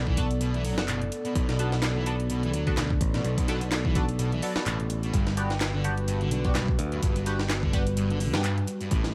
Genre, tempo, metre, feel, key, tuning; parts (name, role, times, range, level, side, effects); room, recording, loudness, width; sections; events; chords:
breakbeat, breaks; 127 BPM; 4/4; swing 56% on 16ths; A4 = 441 Hz
dark analog pad; sustained chords; 0.0-9.1 s; G3 to D5; -37 LUFS; equal; chorus, sidechain pumping
fuzz guitar; riff; 0.0-9.1 s; G2 to F#3; -35 LUFS; equal; distortion, tube saturation
modern bright picked electric bass; bass; 0.0-9.1 s; F#1 to G2; -31 LUFS; equal
breakbeat sampler-style drum kit; drums; 0.1-9.1 s; hi-hat, kick drum, snare drum; -31 LUFS; equal; studio reverb
band-passed chord stab; stabs; 0.2-8.4 s; B3 to A4; -38 LUFS; equal; phaser, analog chorus, delay
house drum kit; drums; 0.2-9.1 s; handclaps, hi-hat; -39 LUFS; equal; studio reverb
light reverb, digital ambience; vinyl crackle; -27 LUFS; mono
0.0-9.1 A section
0.0 Bm7; 5.1 Gmaj7